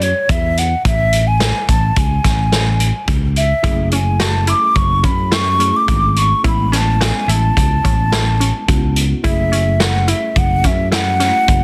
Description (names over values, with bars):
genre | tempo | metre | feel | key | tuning
progressive instrumental, band music in an uneven meter | 107 BPM | 5/4 | straight | A major | A4 = 441 Hz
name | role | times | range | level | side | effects
mellow hollow silver concert flute | melody | 0.0-11.6 s | C#5 to D6 | -20 LUFS | equal | none
sustaining fretless electric bass | bass | 0.0-11.6 s | F#1 to F#2 | -19 LUFS | equal | none
vintage drum kit | drums | 0.0-11.6 s | hi-hat, kick drum, snare drum | -20 LUFS | equal | none
mellow tine electric piano | accompaniment | 3.6-11.6 s | G#3 to G#4 | -27 LUFS | equal | fast tremolo
glassy wavetable pluck | arpeggios | 3.6-11.6 s | C#4 to F#4 | -28 LUFS | equal | chorus
room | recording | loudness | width
light reverb | dense, heavily limited modern master | -15 LUFS | mono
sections
0.0-11.6 A section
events
none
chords
0.0 F#7(no3); 0.9 Amaj7; 3.6 F#m7; 6.4 Amaj7; 9.2 F#m7